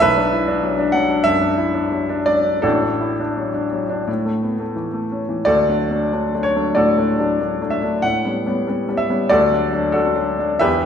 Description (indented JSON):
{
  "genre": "classical, romantic character piece for solo piano",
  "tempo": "80-98 BPM",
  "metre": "4/4",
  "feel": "rubato",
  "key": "D major",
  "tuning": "A4 = 443 Hz",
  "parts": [
    { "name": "warm baby grand piano", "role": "solo", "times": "0.0-10.9 s", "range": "A1 to F#5", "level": "-16 LUFS", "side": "left 1 dB", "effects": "none" }
  ],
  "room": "wet recital hall reverb, RT60 1.6 s",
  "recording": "recorded in a church or concert hall",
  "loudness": "-16 LUFS",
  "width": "side -8 dB against mid",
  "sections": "0.0-5.5 A section; 5.5-10.9 B section",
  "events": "none",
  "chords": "0.0 Bm; 2.6 D/A; 4.1 A; 5.5 D; 8.0 A9; 9.3 D",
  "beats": "| 0.01 0.62 1.25 1.92 | 2.63 3.37 4.08 4.76 | 5.46 6.12 6.77 7.40 | 8.04 8.67 9.30 9.93 | 10.61"
}